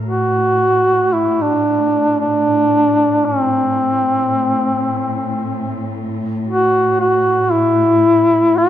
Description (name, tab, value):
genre	caucasian folk, Caucasian lament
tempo	56 BPM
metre	3/4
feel	rubato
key	A dorian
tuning	A4 = 442 Hz
part	warm studio cello section	drone	0.0-8.7 s	A2	-23 LUFS	right 1 dB	none
part	mellow duduk	melody	0.1-8.7 s	C4 to G4	-14 LUFS	equal	tape echo
room	moderate recital hall reverb, RT60 1.4 s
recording	none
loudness	-13 LUFS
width	side -11 dB against mid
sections	0.0-8.7 A section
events	none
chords	none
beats	| 0.04 1.13 2.20 | 3.27 4.35 5.42 | 6.47 7.53 8.58